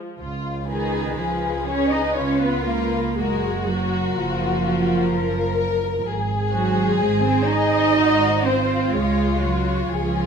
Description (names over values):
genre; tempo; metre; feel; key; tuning
classical, slow romantic movement for string orchestra; 62 BPM; 3/4; rubato; Db major; A4 = 438 Hz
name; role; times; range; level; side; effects
dark symphonic viola section; accompaniment; 0.0-10.3 s; F3 to Eb5; -26 LUFS; left 1 dB; none
dark studio violin section; second line; 0.2-10.3 s; F4 to Bb4; -26 LUFS; left 5 dB; none
warm symphonic double bass section; bass; 0.2-10.3 s; Gb1 to Db2; -26 LUFS; right 3 dB; none
warm symphonic violin section; melody; 0.7-10.3 s; Bb4 to Db5; -31 LUFS; left 8 dB; none
warm symphonic cello section; bass; 0.7-10.3 s; Eb3 to Eb4; -23 LUFS; right 4 dB; none
room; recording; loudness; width
moderate recital hall reverb, RT60 1.6 s; none; -19 LUFS; side -6 dB against mid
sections
0.2-10.3 A section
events
none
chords
0.2 Db7; 3.2 Gbmaj7; 6.0 Ab7; 8.9 Db